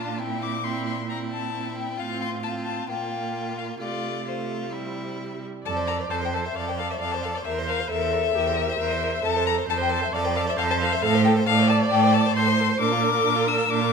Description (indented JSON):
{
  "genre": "quick classical-period movement for string quartet",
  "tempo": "134 BPM",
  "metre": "4/4",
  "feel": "straight",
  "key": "F major",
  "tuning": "A4 = 440 Hz",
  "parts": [
    { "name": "rich violin", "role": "melody", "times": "0.0-13.9 s", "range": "C5 to E6", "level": "-26 LUFS", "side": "left 9 dB", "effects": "none" },
    { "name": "clear violin", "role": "second line", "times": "0.0-13.9 s", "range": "D4 to C5", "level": "-30 LUFS", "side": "left 2 dB", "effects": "none" },
    { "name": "rich viola", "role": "accompaniment", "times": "0.0-13.9 s", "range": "G3 to D5", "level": "-29 LUFS", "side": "right 4 dB", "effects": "none" },
    { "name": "clear cello", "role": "bass", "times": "0.0-13.9 s", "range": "E2 to C3", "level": "-27 LUFS", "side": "right 5 dB", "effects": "none" }
  ],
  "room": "wet recital hall reverb, RT60 1.5 s",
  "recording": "none",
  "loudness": "-22 LUFS",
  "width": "side -5 dB against mid",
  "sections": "0.0-5.7 A section; 5.7-13.9 B section",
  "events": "none",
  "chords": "0.2 C7/Bb; 2.0 F/A; 2.9 Gm7/Bb; 3.8 F/C; 4.7 C; 5.7 F; 7.5 C7/E; 9.2 F; 11.0 Amadd11; 12.8 Bb",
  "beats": "| 0.20 0.64 1.09 1.54 | 1.99 2.44 2.89 3.35 | 3.81 4.28 4.74 5.20 | 5.66 6.11 6.57 7.02 | 7.46 7.91 8.36 8.80 | 9.25 9.69 10.13 10.58 | 11.03 11.47 11.91 12.36 | 12.80 13.25 13.69"
}